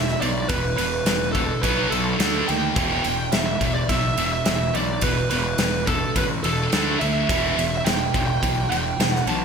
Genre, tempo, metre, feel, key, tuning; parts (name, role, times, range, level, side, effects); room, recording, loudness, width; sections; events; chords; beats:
hard rock; 106 BPM; 4/4; straight; E minor; A4 = 439 Hz
high-gain lead guitar; melody; 0.0-9.4 s; A4 to A5; -25 LUFS; right 2 dB; distortion
scooped high-gain guitar; riff; 0.0-9.4 s; E2 to D4; -28 LUFS; left 12 dB; distortion
scooped high-gain guitar; riff; 0.0-9.4 s; E2 to D4; -26 LUFS; right 7 dB; distortion
fuzz picked electric bass; bass; 0.0-9.4 s; E1 to D#2; -28 LUFS; left 1 dB; overdrive
big rock drum kit; drums; 0.1-9.4 s; kick drum, ride cymbal, snare drum; -25 LUFS; equal; gated reverb
moderate lush hall reverb, RT60 1.9 s, small room reverb; bright 1980s-style digital production; -19 LUFS; side -6 dB against mid
0.0-9.4 A section
0.0 E5; 1.6 B5; 2.2 D5; 2.8 E5; 6.7 D5; 7.3 Em
| 0.50 1.07 1.64 2.20 | 2.77 3.33 3.90 4.47 | 5.03 5.60 6.16 6.73 | 7.30 7.86 8.43 9.00